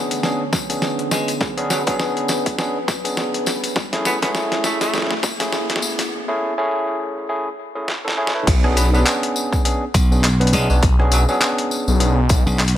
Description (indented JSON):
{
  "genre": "glitch hop",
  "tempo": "102 BPM",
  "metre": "4/4",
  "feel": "swing 58% on 16ths",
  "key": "B dorian",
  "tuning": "A4 = 442 Hz",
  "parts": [
    { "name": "overdriven tine electric piano", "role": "stabs", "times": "0.0-12.6 s", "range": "A3 to C#5", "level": "-22 LUFS", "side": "equal", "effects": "sidechain pumping, ping-pong delay" },
    { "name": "riser", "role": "sound effects", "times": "1.6-6.1 s", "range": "none", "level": "-35 LUFS", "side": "equal", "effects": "none" },
    { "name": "deep dark ambient pad", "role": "texture", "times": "0.0-6.1 s", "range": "D3 to G#5", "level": "-30 LUFS", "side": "equal", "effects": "chorus, built-in reverb, sidechain pumping" },
    { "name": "boom bap sampler-style drum kit", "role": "drums", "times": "0.1-12.8 s", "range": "crash cymbal, handclaps, hi-hat, rim click, snare drum", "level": "-23 LUFS", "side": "equal", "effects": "studio reverb" },
    { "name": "tambourine", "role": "percussion", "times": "0.1-12.7 s", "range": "none", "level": "-28 LUFS", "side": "left 4 dB", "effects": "none" },
    { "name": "electronic kick drum", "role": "drums", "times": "0.5-12.4 s", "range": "none", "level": "-19 LUFS", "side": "equal", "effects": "overdrive, studio reverb" },
    { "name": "clear tenor saxophone", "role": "melody", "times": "1.1-5.0, 8.8-11.4 s", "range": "F#3 to B3", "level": "-27 LUFS", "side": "equal", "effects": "vintage 12-bit sampler grit, ping-pong delay" },
    { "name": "phased detuned saw bass", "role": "bass", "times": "8.5-12.4 s", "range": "B1", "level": "-16 LUFS", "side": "equal", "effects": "phaser" },
    { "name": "glassy slap bass", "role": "bass", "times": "9.9-12.8 s", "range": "B1", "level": "-17 LUFS", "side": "equal", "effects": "none" }
  ],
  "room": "light reverb, digital ambience",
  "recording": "high-pass filter",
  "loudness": "-17 LUFS",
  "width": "side -12 dB against mid",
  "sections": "0.0-8.5 A section; 8.5-12.8 B section",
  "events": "build-up 0.0-8.5; drum fill 0.0-6.1, 7.9-8.5; riser 1.6-6.1; break 6.1-8.5; drop 8.5-12.8",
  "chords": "0.0 Bm69; 3.8 Amaj7; 8.5 Bm69"
}